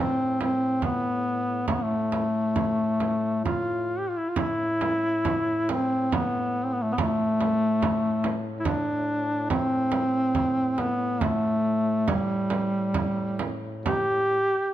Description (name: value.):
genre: caucasian folk, Caucasian lament.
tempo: 64-72 BPM.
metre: 3/4.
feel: rubato.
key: A minor.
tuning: A4 = 440 Hz.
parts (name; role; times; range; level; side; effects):
mellow duduk; melody; 0.0-14.7 s; G3 to G4; -24 LUFS; equal; none.
dark duduk; drone; 0.0-14.6 s; A2; -36 LUFS; left 1 dB; none.
frame drum; percussion; 0.4-14.1 s; none; -30 LUFS; right 5 dB; none.
room: light reverb.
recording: dark, warm production.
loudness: -23 LUFS.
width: side -12 dB against mid.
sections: 0.0-4.4 A section; 4.4-14.7 B section.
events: none.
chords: none.